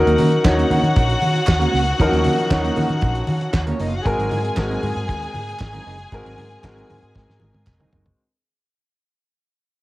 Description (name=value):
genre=disco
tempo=116 BPM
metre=4/4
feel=straight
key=unclear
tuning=A4 = 440 Hz
part: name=rich studio string section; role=second line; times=0.0-7.9 s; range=Db4 to Ab5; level=-24 LUFS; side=left 1 dB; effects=cassette tape
part: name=warm baby grand piano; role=accompaniment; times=0.0-8.2 s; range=F3 to Db5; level=-22 LUFS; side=left 1 dB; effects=cassette tape
part: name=vintage muted fingered electric bass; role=bass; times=0.0-8.1 s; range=F1 to Eb3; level=-22 LUFS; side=equal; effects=tube saturation
part: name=mellow electric guitar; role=accompaniment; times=0.1-8.1 s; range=Gb3 to Bb4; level=-26 LUFS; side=right 4 dB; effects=wide subtle chorus, cassette tape
part: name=damped 70s drum kit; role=drums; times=0.1-8.2 s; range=hi-hat, kick drum, snare drum, toms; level=-20 LUFS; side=equal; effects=none
part: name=congas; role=percussion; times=0.2-8.0 s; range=none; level=-30 LUFS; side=left 1 dB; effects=none
part: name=group handclap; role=percussion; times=0.4-7.8 s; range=none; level=-33 LUFS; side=right 3 dB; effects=none
room=light reverb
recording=home recording on cassette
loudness=-17 LUFS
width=side -18 dB against mid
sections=0.0-8.2 A section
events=fade-out 0.0-8.2; drum fill 7.2-8.2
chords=0.0 Ebm7; 4.1 Ab9